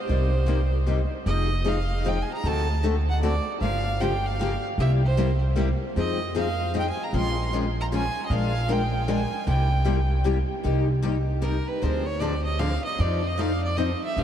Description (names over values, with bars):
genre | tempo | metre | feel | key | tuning
acoustic string swing (jazz manouche) | 154 BPM | 3/4 | swing 64% on 8ths | F minor, C minor from 10.6 s | A4 = 441 Hz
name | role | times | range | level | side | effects
bright violin | melody | 0.0-14.2 s | Bb4 to C6 | -30 LUFS | right 2 dB | analog delay
picked steel-string acoustic guitar | accompaniment | 0.1-14.2 s | C3 to Bb4 | -27 LUFS | left 3 dB | lush chorus
upright bass | bass | 0.1-14.2 s | F1 to G2 | -24 LUFS | equal | none
room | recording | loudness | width
moderate huge ambient reverb, RT60 8.5 s | dreamy mix soaked in reverb, cassette tape | -22 LUFS | side -10 dB against mid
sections
0.0-1.3 A section; 1.3-10.6 B section; 10.6-14.2 C section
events
violin solo 10.6-14.2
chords
0.1 Cm7; 1.3 Fm7; 2.4 D7; 3.6 Gm7b5; 4.8 C7; 6.0 Fm7; 7.1 Bbm7; 8.3 Bb7; 9.5 C7; 10.6 Cm7; 11.8 Dm7b5; 13.0 F7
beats
| 0.08 0.48 0.87 | 1.26 1.65 2.04 | 2.44 2.83 3.22 | 3.61 4.00 4.39 | 4.78 5.17 5.57 | 5.96 6.35 6.74 | 7.13 7.52 7.91 | 8.30 8.69 9.08 | 9.47 9.87 10.26 | 10.65 11.04 11.43 | 11.82 12.21 12.60 | 12.99 13.38 13.77 | 14.16